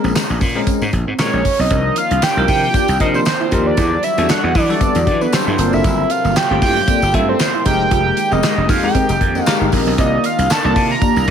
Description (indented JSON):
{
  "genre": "early-eighties boogie funk",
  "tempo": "116 BPM",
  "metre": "4/4",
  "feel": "swing 56% on 16ths",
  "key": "unclear",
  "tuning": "A4 = 440 Hz",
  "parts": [
    { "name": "bell-like tine electric piano", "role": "accompaniment", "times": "0.0-11.3 s", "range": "F3 to D5", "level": "-22 LUFS", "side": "left 2 dB", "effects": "lush chorus" },
    { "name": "mellow electric guitar", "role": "riff", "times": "0.0-11.3 s", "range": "G3 to F4", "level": "-26 LUFS", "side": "right 7 dB", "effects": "ensemble chorus" },
    { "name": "gritty slap bass", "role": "bass", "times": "0.0-11.3 s", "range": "F1 to E3", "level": "-19 LUFS", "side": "equal", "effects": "overdrive" },
    { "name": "tambourine", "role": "percussion", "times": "0.0-11.3 s", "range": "none", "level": "-34 LUFS", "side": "left 11 dB", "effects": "none" },
    { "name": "damped 70s drum kit", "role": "drums", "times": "0.2-11.3 s", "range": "handclaps, hi-hat, kick drum, snare drum", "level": "-19 LUFS", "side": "equal", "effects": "none" },
    { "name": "fat analog lead", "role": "melody", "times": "1.2-11.3 s", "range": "B4 to Bb5", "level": "-18 LUFS", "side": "right 2 dB", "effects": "chorus, ping-pong delay" },
    { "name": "warm analog pad", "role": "sustained chords", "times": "1.7-11.3 s", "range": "C3 to G4", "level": "-26 LUFS", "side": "left 1 dB", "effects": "chorus" },
    { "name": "mellow synth brass", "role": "second line", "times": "2.7-11.1 s", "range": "Bb3 to Eb5", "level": "-24 LUFS", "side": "left 2 dB", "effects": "chorus" }
  ],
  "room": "moderate plate reverb, RT60 2.6 s",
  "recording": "dreamy mix soaked in reverb",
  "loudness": "-13 LUFS",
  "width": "side -8 dB against mid",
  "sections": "0.0-1.7 A section; 1.7-11.3 B section",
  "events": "none",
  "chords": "0.0 Bbm9; 1.7 Cm11; 3.8 Em11; 5.6 Gm11; 7.7 Fm11; 10.0 Cm11",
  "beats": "0.15 0.67 1.19 | 1.71 2.22 2.74 3.26 | 3.77 4.29 4.81 5.33 | 5.84 6.36 6.88 7.40 | 7.91 8.43 8.95 9.46 | 9.98 10.50 11.02"
}